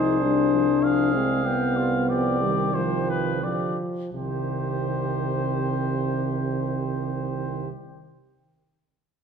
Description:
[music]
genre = classical, brass quintet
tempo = 84-98 BPM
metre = 4/4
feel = straight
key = C minor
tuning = A4 = 443 Hz
[part]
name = warm trumpet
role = melody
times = 0.0-7.7 s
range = B4 to F5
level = -30 LUFS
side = left 4 dB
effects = none
[part]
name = mellow trumpet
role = second line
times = 0.0-7.7 s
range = F4 to Ab4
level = -32 LUFS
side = right 9 dB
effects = none
[part]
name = mellow French horn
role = accompaniment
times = 0.0-7.7 s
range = C3 to Eb4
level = -25 LUFS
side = left 4 dB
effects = none
[part]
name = mellow trombone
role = accompaniment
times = 0.0-7.7 s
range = D3 to Ab3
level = -31 LUFS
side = right 5 dB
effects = none
[part]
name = clear tuba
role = bass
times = 0.0-7.7 s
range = C2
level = -30 LUFS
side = right 4 dB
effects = none
[sound]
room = wet recital hall reverb, RT60 1.4 s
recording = minimal, uncompressed stereo recording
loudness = -22 LUFS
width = side -6 dB against mid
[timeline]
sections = 0.0-4.1 A section; 4.1-6.9 B section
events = slowing down 0.0-4.1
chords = 0.0 Fm/C; 1.4 G7/C; 4.1 Cm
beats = 0.20 0.82 | 1.45 2.08 2.74 3.43 | 4.13 4.83 5.53 6.23

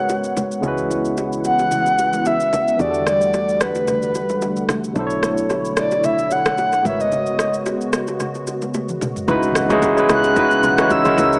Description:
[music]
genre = amapiano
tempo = 111 BPM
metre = 4/4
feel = swing 55% on 16ths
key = unclear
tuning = A4 = 441 Hz
[part]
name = breathy flute-like synth lead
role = melody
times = 0.0-11.4 s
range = B4 to F#6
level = -18 LUFS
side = equal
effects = chorus, analog delay
[part]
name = barky tine electric piano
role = accompaniment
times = 0.0-11.4 s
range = B2 to C#5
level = -20 LUFS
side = equal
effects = analog delay
[part]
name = hollow soft pad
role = sustained chords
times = 0.0-11.4 s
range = G#2 to F#5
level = -26 LUFS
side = equal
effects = ensemble chorus, sidechain pumping
[part]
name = afro-pop drum kit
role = drums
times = 0.1-11.4 s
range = kick drum, rim click, shaker, toms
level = -24 LUFS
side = equal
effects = analog delay
[part]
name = bongos and congas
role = percussion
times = 0.1-11.3 s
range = none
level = -30 LUFS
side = equal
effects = none
[part]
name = woody FM bass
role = bass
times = 0.6-9.2 s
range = G#1 to E2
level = -29 LUFS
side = equal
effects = none
[part]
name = punchy chord stab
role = stabs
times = 9.3-11.3 s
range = D#4 to B4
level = -25 LUFS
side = equal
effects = none
[part]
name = woody log drum bass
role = bass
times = 9.3-11.4 s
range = B1 to C#2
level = -26 LUFS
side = equal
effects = none
[part]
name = impact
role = sound effects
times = 9.5-11.4 s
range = none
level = -34 LUFS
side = equal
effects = none
[sound]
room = light reverb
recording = echo-heavy mix, small speaker sound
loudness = -16 LUFS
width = side -36 dB against mid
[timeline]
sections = 0.0-9.3 A section; 9.3-11.4 B section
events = drum fill 8.7-9.3; drop 9.3-11.4; impact 9.3-11.4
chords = 0.0 G#m11; 0.6 C#m7; 2.8 Em11; 5.0 Bm11; 6.8 G#m11; 9.3 C#m11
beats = 0.09 | 0.63 1.17 1.72 2.25 | 2.80 3.34 3.88 4.42 | 4.96 5.50 6.04 6.58 | 7.12 7.66 8.20 8.74 | 9.28 9.82 10.36 10.90

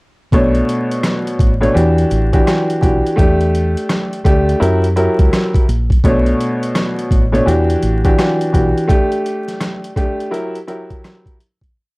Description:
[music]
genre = hip hop, boom-bap hip-hop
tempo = 84 BPM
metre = 4/4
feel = swing 62% on 16ths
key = B minor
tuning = A4 = 436 Hz
[part]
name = warm upright piano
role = accompaniment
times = 0.3-11.4 s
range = B2 to C#5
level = -16 LUFS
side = equal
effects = cassette tape, high-pass filter, low-pass filter
[part]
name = deep dub fingered electric bass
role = bass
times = 0.3-8.7 s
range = A1 to F#2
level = -16 LUFS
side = equal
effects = none
[part]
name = boom bap sampler-style drum kit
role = drums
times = 0.3-11.8 s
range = hi-hat, kick drum, rim click, snare drum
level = -16 LUFS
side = equal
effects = none
[sound]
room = little or no reverb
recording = dry, gritty hardware recording, vinyl crackle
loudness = -12 LUFS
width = side -25 dB against mid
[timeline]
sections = 0.3-11.8 verse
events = break 8.9-11.8; fade-out 8.9-11.8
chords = 0.3 Bm9; 1.8 Em9; 3.2 A7sus4/E; 4.6 F#7b9; 6.0 Bm9; 7.5 Em9; 8.9 A7sus4; 10.3 F#7b9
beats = | 0.32 1.04 1.75 2.47 | 3.18 3.90 4.61 5.32 | 6.04 6.75 7.47 8.18 | 8.89 9.61 10.32 11.04

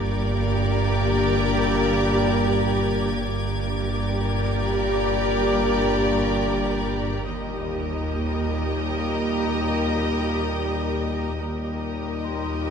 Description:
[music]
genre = cinematic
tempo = 74 BPM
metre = 5/4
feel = straight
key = unclear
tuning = A4 = 439 Hz
[part]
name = rich chamber violin section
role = melody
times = 0.0-12.7 s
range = D5 to Eb5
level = -31 LUFS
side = equal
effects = none
[part]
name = rich chamber violin section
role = second line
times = 0.0-12.7 s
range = Bb4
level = -31 LUFS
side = left 4 dB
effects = none
[part]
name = warm symphonic viola section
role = accompaniment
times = 0.0-12.7 s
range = G4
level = -28 LUFS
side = right 2 dB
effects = none
[part]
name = bright trombone section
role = sustained chords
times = 0.0-12.7 s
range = Bb2 to G3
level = -31 LUFS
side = right 4 dB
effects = none
[part]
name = mellow French horn section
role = sustained chords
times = 0.0-12.7 s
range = Bb3 to Eb4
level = -29 LUFS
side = left 5 dB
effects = none
[part]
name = clear chamber cello section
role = bass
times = 0.0-12.7 s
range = Eb2 to G2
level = -30 LUFS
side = right 2 dB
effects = none
[part]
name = clear studio double bass section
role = bass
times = 0.0-12.7 s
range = G1 to Eb2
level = -31 LUFS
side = right 4 dB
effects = none
[part]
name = deep rumbling drone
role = drone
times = 0.0-12.7 s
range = G1 to Eb2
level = -31 LUFS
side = equal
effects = built-in reverb
[part]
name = clear chamber violin section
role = texture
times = 0.0-6.8 s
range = D6 to G#6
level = -36 LUFS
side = left 5 dB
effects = none
[part]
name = concert harp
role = texture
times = 0.0-12.7 s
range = D5 to E6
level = -34 LUFS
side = left 10 dB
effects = none
[sound]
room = moderate scoring stage reverb, RT60 2.0 s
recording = none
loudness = -21 LUFS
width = side -7 dB against mid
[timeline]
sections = 0.0-12.7 A section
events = none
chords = 0.0 Gm; 7.3 Eb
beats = 0.00 0.81 1.62 2.43 | 3.24 4.05 4.86 5.67 6.47 | 7.29 8.11 8.93 9.75 10.57 | 11.41 12.26

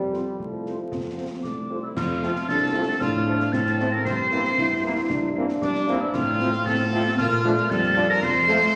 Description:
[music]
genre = military-style march for wind band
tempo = 115 BPM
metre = 2/4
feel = straight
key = F major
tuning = A4 = 436 Hz
[part]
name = dark euphonium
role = second line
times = 0.0-8.8 s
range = F3 to E4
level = -30 LUFS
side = equal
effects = none
[part]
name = clear trombone section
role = sustained chords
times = 0.0-8.6 s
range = E3 to D4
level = -35 LUFS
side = equal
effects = none
[part]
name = mellow tuba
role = bass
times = 0.0-8.7 s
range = C2 to Bb2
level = -31 LUFS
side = equal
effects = none
[part]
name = mellow trumpet section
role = melody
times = 0.1-8.8 s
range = D4 to C5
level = -33 LUFS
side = equal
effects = none
[part]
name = mellow French horn section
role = accompaniment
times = 0.1-8.6 s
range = F3 to A4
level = -33 LUFS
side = equal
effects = none
[part]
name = concert snare drum, concert bass drum and clash cymbals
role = drums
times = 0.1-8.7 s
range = none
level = -37 LUFS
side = equal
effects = none
[part]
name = mellow wooden piccolo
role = second line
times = 1.4-8.8 s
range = D6 to C7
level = -27 LUFS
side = equal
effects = none
[sound]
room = wet scoring stage reverb, RT60 2.0 s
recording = vinyl crackle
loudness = -23 LUFS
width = mono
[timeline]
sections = 0.0-2.0 A section; 2.0-8.8 A section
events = none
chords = 0.0 F; 3.0 F/A; 4.1 C7/G; 6.1 F/A; 7.2 Bb; 8.2 F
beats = 0.40 | 0.92 1.44 | 1.97 2.49 | 3.01 3.53 | 4.05 4.58 | 5.10 5.62 | 6.14 6.66 | 7.18 7.70 | 8.23 8.75

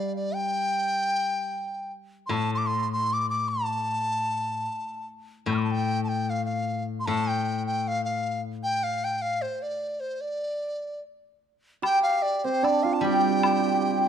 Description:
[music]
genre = chinese traditional, Chinese chamber ensemble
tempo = 76 BPM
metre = 2/4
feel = rubato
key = unclear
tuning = A4 = 441 Hz
[part]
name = hollow dizi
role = melody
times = 0.0-14.1 s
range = C5 to G6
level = -27 LUFS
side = equal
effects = none
[part]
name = steel-string zither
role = accompaniment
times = 0.0-9.4, 13.0-14.1 s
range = A2 to G3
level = -30 LUFS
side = left 2 dB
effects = none
[part]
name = hammered dulcimer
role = second line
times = 11.8-14.1 s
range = C4 to G4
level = -23 LUFS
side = right 2 dB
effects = none
[part]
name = woodblock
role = percussion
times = 11.8-13.6 s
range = none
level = -32 LUFS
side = left 3 dB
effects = none
[sound]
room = moderate recital hall reverb, RT60 1.4 s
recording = dark, warm production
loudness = -24 LUFS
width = side -8 dB against mid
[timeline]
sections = 0.0-11.8 A section; 11.8-14.1 B section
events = none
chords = none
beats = | 0.75 1.53 | 2.31 3.09 | 3.87 4.66 | 5.47 6.28 | 7.08 7.86 | 8.64 9.43 | 10.22 11.02 | 11.83 12.63 | 13.42

